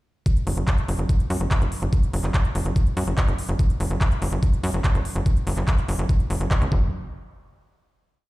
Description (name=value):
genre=psychedelic trance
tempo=144 BPM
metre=4/4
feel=straight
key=unclear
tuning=A4 = 440 Hz
part: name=big-room dance drum kit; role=drums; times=0.3-6.7 s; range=handclaps, hi-hat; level=-32 LUFS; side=equal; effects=overdrive
part: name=electronic kick drum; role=drums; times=0.3-6.8 s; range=none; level=-20 LUFS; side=equal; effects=none
part: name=tight sequencer bass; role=bass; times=0.5-6.9 s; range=F#1 to F#2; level=-23 LUFS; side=equal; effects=none
room=little or no reverb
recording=played on a big sound system in a bare room, large studio reverb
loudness=-20 LUFS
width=side -19 dB against mid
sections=0.3-6.9 drop; 6.9-8.3 final hit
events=drop 0.3-6.9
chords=none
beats=| 0.26 0.68 1.09 1.51 | 1.93 2.34 2.76 3.18 | 3.59 4.01 4.43 4.84 | 5.26 5.68 6.09 6.51